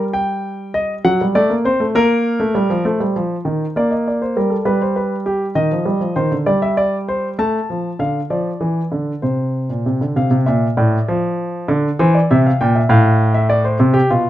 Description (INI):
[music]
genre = classical, baroque-style two-part invention for grand piano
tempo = 66 BPM (dotted quarters)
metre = 6/8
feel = straight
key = G minor, F major from 6.5 s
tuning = A4 = 440 Hz
[part]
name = dark grand piano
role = solo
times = 0.0-14.3 s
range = A2 to A5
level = -15 LUFS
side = equal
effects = none
[sound]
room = moderate large studio reverb, RT60 0.9 s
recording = none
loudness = -15 LUFS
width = side -13 dB against mid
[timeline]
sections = 0.0-2.9 A section; 2.9-10.2 B section; 10.2-14.3 C section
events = none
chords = 0.2 Eb/G; 1.1 D7/F#; 2.0 Gm/Bb; 2.9 F7; 3.8 Bb; 4.7 G; 5.6 Cm/Eb; 6.5 C/G; 7.4 F; 8.3 Dmadd9; 9.2 Bbadd9; 10.2 F; 11.1 Dm; 12.0 C7; 12.9 F/A; 13.8 C5